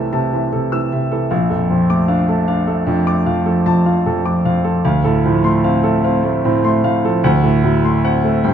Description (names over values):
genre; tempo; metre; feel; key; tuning
classical, romantic nocturne for solo piano; 50 BPM (dotted quarters); 9/8; rubato; unclear; A4 = 441 Hz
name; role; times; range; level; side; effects
warm concert grand piano; solo; 0.0-8.5 s; Bb1 to E6; -13 LUFS; equal; none
room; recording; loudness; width
wet recital hall reverb, RT60 1.3 s; close, detailed microphones; -13 LUFS; side -8 dB against mid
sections
0.0-8.5 A section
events
none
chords
0.0 Am/C; 1.3 Bbmaj7; 4.8 Dm7; 7.2 D7